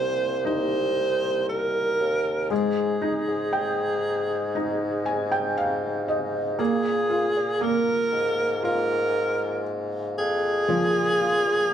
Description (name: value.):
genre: pop ballad.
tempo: 58 BPM.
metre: 4/4.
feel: straight.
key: unclear.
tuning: A4 = 440 Hz.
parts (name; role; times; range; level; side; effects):
warm alto saxophone; melody; 0.0-11.7 s; Ab4 to C5; -24 LUFS; right 1 dB; none.
felt-muted upright piano; accompaniment; 0.0-11.7 s; C3 to Ab5; -28 LUFS; equal; none.
mellow bassoon; bass; 0.0-11.7 s; C2 to Bb2; -29 LUFS; left 1 dB; none.
room: moderate large studio reverb, RT60 1.2 s.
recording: band playing live in one room.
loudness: -22 LUFS.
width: side -9 dB against mid.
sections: 0.0-11.7 A section.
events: felt piano fill 4.6-6.6.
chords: 0.0 Cm7; 2.5 Ab5; 6.6 Bb5.